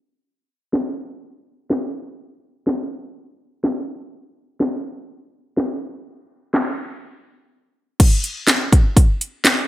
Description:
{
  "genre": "pop",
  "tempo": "124 BPM",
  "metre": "4/4",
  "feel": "straight",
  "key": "none",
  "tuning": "none",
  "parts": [
    { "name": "house drum kit", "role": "drums", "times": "0.7-9.6 s", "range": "crash cymbal, handclaps, hi-hat, kick drum, snare drum", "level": "-16 LUFS", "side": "equal", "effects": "gated reverb" }
  ],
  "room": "moderate plate reverb, RT60 1.3 s",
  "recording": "bright 1980s-style digital production, low-pass filter",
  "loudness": "-18 LUFS",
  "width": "side -15 dB against mid",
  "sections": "0.0-8.0 A section; 8.0-9.7 B section",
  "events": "break 0.0, 7.0-8.0; filter sweep 0.0-8.0; drop 8.0-9.7",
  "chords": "none"
}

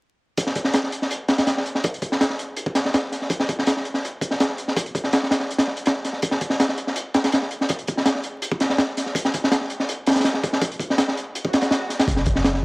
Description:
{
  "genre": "drum and bass, jungle",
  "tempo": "164 BPM",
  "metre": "4/4",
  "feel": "straight",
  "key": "unclear",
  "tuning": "A4 = 439 Hz",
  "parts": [
    { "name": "crunchy breakbeat drum kit", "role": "drums", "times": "0.4-12.6 s", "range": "hi-hat, kick drum, snare drum", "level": "-20 LUFS", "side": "equal", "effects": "high-pass filter on kick, cassette tape, high-pass filter on hats, high-pass filter on snare, high-pass filter on room" },
    { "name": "swell", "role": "sound effects", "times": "11.5-12.1 s", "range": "none", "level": "-34 LUFS", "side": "right 2 dB", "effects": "none" },
    { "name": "long sustained 808-style bass", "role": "bass", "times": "12.1-12.6 s", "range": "F#1", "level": "-23 LUFS", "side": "equal", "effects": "none" }
  ],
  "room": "light reverb",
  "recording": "home recording on cassette, vinyl crackle",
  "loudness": "-20 LUFS",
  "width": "side -30 dB against mid",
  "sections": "0.4-12.1 A section",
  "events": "swell 11.5-12.1",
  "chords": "none"
}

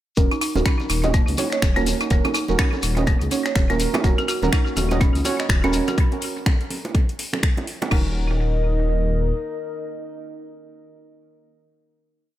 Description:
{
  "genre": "afro house",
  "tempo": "124 BPM",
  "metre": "4/4",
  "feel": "swing 59% on 16ths",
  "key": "Eb minor pentatonic",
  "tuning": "A4 = 440 Hz",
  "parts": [
    { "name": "deep mellow chord stab", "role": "stabs", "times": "0.2-11.5 s", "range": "Db4 to Eb5", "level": "-27 LUFS", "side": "right 5 dB", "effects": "chorus, sidechain pumping, tape echo" },
    { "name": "dark detuned saw bass", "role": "bass", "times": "0.2-9.3 s", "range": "Eb1 to Db2", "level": "-23 LUFS", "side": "equal", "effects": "tube saturation, sidechain pumping" },
    { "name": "afro-pop drum kit", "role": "drums", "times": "0.2-8.0 s", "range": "crash cymbal, finger snaps, hi-hat", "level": "-29 LUFS", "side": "left 1 dB", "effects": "studio reverb, tape echo" },
    { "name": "electronic kick drum", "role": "drums", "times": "0.2-8.0 s", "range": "none", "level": "-19 LUFS", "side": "equal", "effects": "studio reverb" },
    { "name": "bongos", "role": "percussion", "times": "0.2-7.9 s", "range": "none", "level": "-30 LUFS", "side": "right 3 dB", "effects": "tape echo" },
    { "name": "shekere", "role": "percussion", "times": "0.2-6.0 s", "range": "none", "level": "-34 LUFS", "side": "left 2 dB", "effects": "tape echo" },
    { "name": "folk marimba with hard mallets", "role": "arpeggios", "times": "0.3-8.1 s", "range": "Bb3 to Eb5", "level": "-26 LUFS", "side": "right 1 dB", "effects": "sidechain pumping, tape echo" },
    { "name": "dark analog pad", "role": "sustained chords", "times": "4.0-11.5 s", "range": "Bb3 to Eb5", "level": "-30 LUFS", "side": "left 2 dB", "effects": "lush chorus, sidechain pumping" }
  ],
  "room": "light reverb",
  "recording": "echo-heavy mix",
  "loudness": "-18 LUFS",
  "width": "side -13 dB against mid",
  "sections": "0.2-7.9 drop; 7.9-11.8 final chord",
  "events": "drop 0.2-7.9",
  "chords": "0.2 Ebm7"
}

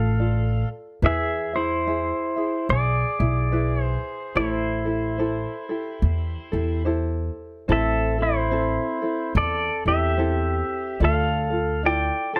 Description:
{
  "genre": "Hawaiian",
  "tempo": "72 BPM",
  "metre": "4/4",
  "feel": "swing 61% on 8ths",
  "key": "A minor",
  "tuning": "A4 = 440 Hz",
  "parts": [
    { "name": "pedal steel guitar", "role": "melody", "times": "0.0-12.4 s", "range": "E4 to A5", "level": "-27 LUFS", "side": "equal", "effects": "plate reverb" },
    { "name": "tenor ukulele", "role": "accompaniment", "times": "0.0-12.4 s", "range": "C4 to E5", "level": "-31 LUFS", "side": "equal", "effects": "plate reverb" },
    { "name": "upright bass", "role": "bass", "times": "0.0-12.1 s", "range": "A1 to E2", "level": "-26 LUFS", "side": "equal", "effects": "none" }
  ],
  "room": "light reverb",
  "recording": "none",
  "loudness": "-24 LUFS",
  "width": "mono",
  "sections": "0.0-7.7 A section; 7.7-12.4 A section",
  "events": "none",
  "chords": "0.0 Dm; 1.0 E; 4.4 Am7; 11.0 Dmadd9"
}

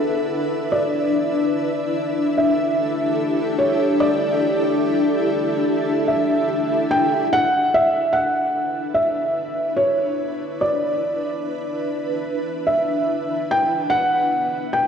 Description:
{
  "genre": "ambient",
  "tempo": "73 BPM",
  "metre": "4/4",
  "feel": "straight",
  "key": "D major",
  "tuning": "A4 = 440 Hz",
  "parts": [
    { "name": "felt-muted upright piano", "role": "melody", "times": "0.0-14.9 s", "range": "A4 to G5", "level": "-20 LUFS", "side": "equal", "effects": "diffuse ambient delay" },
    { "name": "ethereal airy pad", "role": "sustained chords", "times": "0.0-14.9 s", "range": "B3 to E5", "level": "-22 LUFS", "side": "left 1 dB", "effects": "ensemble chorus, built-in reverb, tremolo" }
  ],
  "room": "wet concert hall reverb, RT60 2.4 s",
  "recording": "dark, warm production",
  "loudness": "-18 LUFS",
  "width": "side -7 dB against mid",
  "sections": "0.0-7.3 A section; 7.3-14.9 B section",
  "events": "fade-in on ambient pad 7.3-14.9",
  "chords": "0.0 Dsus2; 0.7 Em7; 7.3 Dsus2; 13.9 A7sus2 (rootless)"
}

